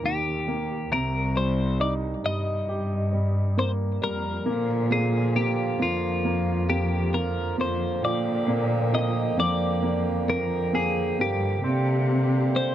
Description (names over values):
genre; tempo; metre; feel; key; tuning
pop ballad; 67 BPM; 4/4; straight; unclear; A4 = 440 Hz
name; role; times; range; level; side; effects
twelve-string electric guitar; melody; 0.0-12.7 s; F4 to Eb5; -28 LUFS; left 3 dB; none
clear baby grand piano; accompaniment; 0.0-12.7 s; C3 to G4; -30 LUFS; right 2 dB; none
muted studio cello section; bass; 0.0-12.7 s; C2 to C3; -26 LUFS; left 1 dB; none
pedal harmonium; sustained chords; 4.5-12.7 s; D3 to G5; -30 LUFS; right 6 dB; stereo widening
room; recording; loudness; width
light reverb; none; -22 LUFS; side -11 dB against mid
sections
0.0-11.6 A section; 11.6-12.7 B section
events
none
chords
0.0 Eb; 0.9 Cm7; 4.5 Bb; 11.6 Gm